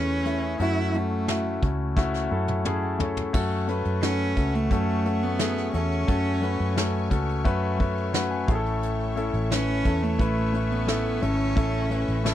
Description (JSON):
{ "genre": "piano-driven pop", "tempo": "88 BPM", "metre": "4/4", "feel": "straight", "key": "unclear", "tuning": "A4 = 441 Hz", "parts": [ { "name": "rich cello", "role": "melody", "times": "0.0-12.3 s", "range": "A3 to E4", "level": "-29 LUFS", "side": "right 3 dB", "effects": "none" }, { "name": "clear concert grand piano", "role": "accompaniment", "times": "0.0-12.3 s", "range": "A2 to B5", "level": "-27 LUFS", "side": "left 4 dB", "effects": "none" }, { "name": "vintage muted fingered electric bass", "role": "bass", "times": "0.0-12.3 s", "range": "G#1 to F#2", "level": "-28 LUFS", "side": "equal", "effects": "none" }, { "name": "soft brush drum kit", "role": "drums", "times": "0.3-12.3 s", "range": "crash cymbal, hi-hat, kick drum, snare drum, toms", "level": "-27 LUFS", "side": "equal", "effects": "none" }, { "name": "bright studio string section", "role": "sustained chords", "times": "3.3-12.3 s", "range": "A3 to C#6", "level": "-40 LUFS", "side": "equal", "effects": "none" } ], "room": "little or no reverb", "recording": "none", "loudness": "-23 LUFS", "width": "side -12 dB against mid", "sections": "0.0-3.3 A section; 3.3-12.3 B section", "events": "drum fill 2.0-3.3; grand piano fill 2.0-3.3, 7.5-8.8", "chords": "0.0 Amaj7/E; 0.6 F#m7; 8.5 A" }